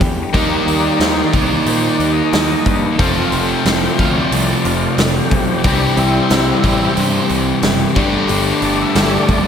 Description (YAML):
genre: classic rock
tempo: 90 BPM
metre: 4/4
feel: straight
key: unclear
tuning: A4 = 441 Hz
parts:
  - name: picked plugged-in twelve-string acoustic guitar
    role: accompaniment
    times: 0.0-9.5 s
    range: G2 to Bb4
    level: -25 LUFS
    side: left 6 dB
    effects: slapback echo
  - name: fuzz picked electric bass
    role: bass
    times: 0.0-9.5 s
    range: F1 to Bb2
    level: -21 LUFS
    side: equal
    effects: overdrive
  - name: big rock drum kit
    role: drums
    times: 0.0-9.4 s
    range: hi-hat, kick drum, snare drum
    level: -19 LUFS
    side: equal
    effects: none
  - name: tonewheel organ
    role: sustained chords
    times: 0.3-9.4 s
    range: G3 to G5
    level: -21 LUFS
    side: equal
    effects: slow rotary speaker, overdrive
  - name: biting overdriven guitar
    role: riff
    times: 0.3-9.5 s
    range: F2 to Eb4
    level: -19 LUFS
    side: right 8 dB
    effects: none
  - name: distorted electric guitar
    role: riff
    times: 0.3-9.5 s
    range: C3 to G4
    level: -19 LUFS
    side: left 9 dB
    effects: overdrive
room: moderate lush hall reverb, RT60 1.9 s, small room ambience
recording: big arena sound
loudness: -12 LUFS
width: side -8 dB against mid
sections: 0.0-9.5 A section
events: tonewheel organ solo 0.0-9.5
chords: 0.3 Eb; 3.0 F; 5.6 C; 8.0 Gsus2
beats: | 0.34 1.01 1.67 2.33 | 3.00 3.66 4.32 4.98 | 5.65 6.31 6.97 7.63 | 8.29 8.96